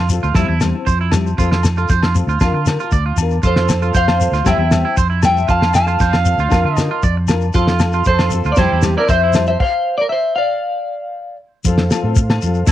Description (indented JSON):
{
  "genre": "highlife guitar band",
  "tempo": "117 BPM",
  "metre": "4/4",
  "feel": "straight",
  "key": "F major",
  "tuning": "A4 = 440 Hz",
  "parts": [
    { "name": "electric guitar at the edge of break-up", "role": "arpeggios", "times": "0.0-9.3, 12.7 s", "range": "E4 to D5", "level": "-22 LUFS", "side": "right 8 dB", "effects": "lush chorus, cassette tape, tape echo" },
    { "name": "fingered electric bass", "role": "bass", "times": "0.0-12.7 s", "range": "D2 to D3", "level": "-17 LUFS", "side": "equal", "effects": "none" },
    { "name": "nylon-string guitar", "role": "accompaniment", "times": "0.1-12.6 s", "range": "F3 to Bb4", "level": "-24 LUFS", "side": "left 8 dB", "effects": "cassette tape" },
    { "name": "shekere", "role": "percussion", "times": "0.1-12.7 s", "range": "none", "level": "-22 LUFS", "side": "left 2 dB", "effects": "none" },
    { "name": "damped 70s drum kit", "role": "drums", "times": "0.3-12.7 s", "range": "crash cymbal, kick drum, snare drum", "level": "-17 LUFS", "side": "equal", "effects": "cassette tape" },
    { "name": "agogo bells", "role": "percussion", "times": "0.4-12.7 s", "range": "none", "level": "-28 LUFS", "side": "left 9 dB", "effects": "none" },
    { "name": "clean electric guitar", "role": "melody", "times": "3.5-11.4 s", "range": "F4 to A5", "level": "-18 LUFS", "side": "left 2 dB", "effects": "analog chorus, cassette tape" },
    { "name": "warm trumpet", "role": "second line", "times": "3.5-9.6 s", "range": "F4 to F5", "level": "-24 LUFS", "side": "right 7 dB", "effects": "cassette tape" },
    { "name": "mellow tonewheel organ", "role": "sustained chords", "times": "11.7-12.7 s", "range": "A4 to F5", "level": "-26 LUFS", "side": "equal", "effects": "slow rotary speaker, cassette tape" }
  ],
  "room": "light reverb",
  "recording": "home recording on cassette",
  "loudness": "-13 LUFS",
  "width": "side -12 dB against mid",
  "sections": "0.0-11.7 A section; 11.7-12.7 B section",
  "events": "stop 9.6-11.7; clean electric guitar solo 11.7-12.7",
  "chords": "0.4 C; 1.4 F; 2.4 Bb/F; 3.4 F; 4.5 C; 5.5 F; 6.5 Bb/F; 7.6 F; 8.6 C; 9.6 Bbadd9 (rootless); 10.6 N.C.; 11.7 F",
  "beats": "0.36 0.87 | 1.39 1.90 2.41 2.93 | 3.44 3.96 4.47 4.98 | 5.50 6.01 6.53 7.04 | 7.55 8.07 8.58 9.09 | 9.61 10.12 10.63 11.14 | 11.66 12.17 12.68"
}